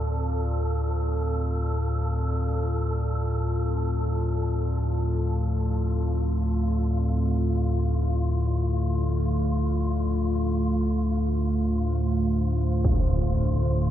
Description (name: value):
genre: dark ambient drone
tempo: free time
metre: none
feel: none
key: D minor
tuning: A4 = 440 Hz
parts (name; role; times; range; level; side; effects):
- deep dark ambient pad; sustained chords; 0.0-13.9 s; D3 to D5; -32 LUFS; left 1 dB; chorus, built-in reverb
- deep rumbling drone; drone; 0.0-13.9 s; D2 to A2; -24 LUFS; equal; built-in reverb
- wind-like tuned noise texture; texture; 0.0-13.9 s; F4 to A4; -35 LUFS; right 3 dB; built-in reverb
- impact; percussion; 12.8-13.1 s; none; -26 LUFS; equal; low-pass filter on sfx
room: wet cathedral reverb, RT60 5.6 s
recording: dark, warm production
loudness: -23 LUFS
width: side -11 dB against mid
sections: 0.0-13.9 A section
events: none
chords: 0.0 Dm7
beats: free time